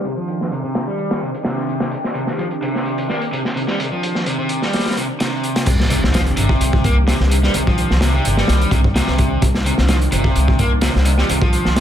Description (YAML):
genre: breakbeat, breaks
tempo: 128 BPM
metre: 4/4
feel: swing 53% on 16ths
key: C minor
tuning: A4 = 445 Hz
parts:
  - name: phased analog pad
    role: sustained chords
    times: 0.0-11.8 s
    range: Eb3 to G4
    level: -25 LUFS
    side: equal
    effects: phaser, chorus, vintage 12-bit sampler grit, sidechain pumping
  - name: raw garage guitar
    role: riff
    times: 0.0-11.8 s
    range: C3 to Bb3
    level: -21 LUFS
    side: equal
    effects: overdrive, low-pass filter, tape echo
  - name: crunchy breakbeat drum kit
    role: drums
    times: 0.0-11.8 s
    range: crash cymbal, hi-hat, kick drum, snare drum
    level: -20 LUFS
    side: equal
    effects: high-pass filter on kick, high-pass filter on hats, high-pass filter on cymbals, high-pass filter on snare, high-pass filter on room
  - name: upright bass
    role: bass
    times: 5.7-11.8 s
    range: G1 to C2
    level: -17 LUFS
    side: equal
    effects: none
  - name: impact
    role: sound effects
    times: 5.7-7.5 s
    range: none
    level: -26 LUFS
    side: equal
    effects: none
room: studio ambience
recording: low-pass filter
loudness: -15 LUFS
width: side -10 dB against mid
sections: 0.0-5.7 A section; 5.7-11.8 B section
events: filter sweep on overdriven electric guitar 0.0-5.7; filter sweep 0.0-5.7; drop 5.7-11.8; impact 5.7-7.5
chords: 0.0 Cmadd9